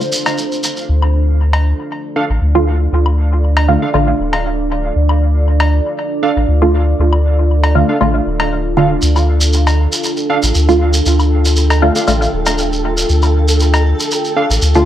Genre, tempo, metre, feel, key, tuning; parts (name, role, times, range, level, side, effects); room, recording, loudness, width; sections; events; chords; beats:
dub techno; 118 BPM; 4/4; swing 54% on 16ths; D minor; A4 = 439 Hz
deep dark ambient pad; sustained chords; 0.0-14.9 s; D4 to G5; -20 LUFS; right 2 dB; chorus, built-in reverb
filtered dub chord stab; stabs; 0.0-14.9 s; D3 to F4; -17 LUFS; right 1 dB; phaser, dub echo
shekere; percussion; 0.0-0.9, 9.0-14.8 s; -20 LUFS; right 1 dB
cowbell and woodblock; percussion; 0.3-13.8 s; -21 LUFS; left 3 dB; dub echo
soft dub sub bass; bass; 0.9-14.9 s; D1 to D2; -13 LUFS; equal
warbly lo-fi synth keys; riff; 2.2-14.4 s; D4 to F5; -22 LUFS; right 2 dB; chorus, dub echo
flickering grainy texture; texture; 9.9-14.9 s; A4; -24 LUFS; equal; built-in reverb
light reverb; -11 LUFS; side -11 dB against mid
0.9-14.9 A section
break 0.0-0.9
0.0 Dm
0.38 | 0.89 1.40 1.91 2.41 | 2.92 3.43 3.94 4.45 | 4.96 5.46 5.97 6.48 | 6.99 7.50 8.01 8.52 | 9.02 9.53 10.04 10.55 | 11.06 11.57 12.07 12.58 | 13.09 13.60 14.11 14.62